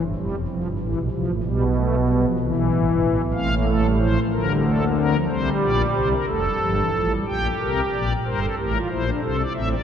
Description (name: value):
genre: classical, baroque-style 4-part fugue for pipe organ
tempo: 62 BPM (dotted quarters)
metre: 6/8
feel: straight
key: F major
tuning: A4 = 441 Hz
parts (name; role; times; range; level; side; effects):
- pipe organ, strings celeste; solo; 0.0-9.8 s; E1 to G5; -19 LUFS; equal; none
room: wet cathedral reverb, RT60 5.1 s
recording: dark, warm production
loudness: -19 LUFS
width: side -8 dB against mid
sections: 0.0-7.3 A section; 7.3-9.8 B section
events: none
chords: 0.5 F; 1.4 G7/B; 2.4 C; 3.4 F/A; 4.3 Bb/D; 5.3 C5; 6.3 F; 7.3 Gm/Bb; 8.3 Edim/G; 9.2 Am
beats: 0.47 | 1.43 2.39 | 3.35 4.32 | 5.29 6.27 | 7.26 8.25 | 9.22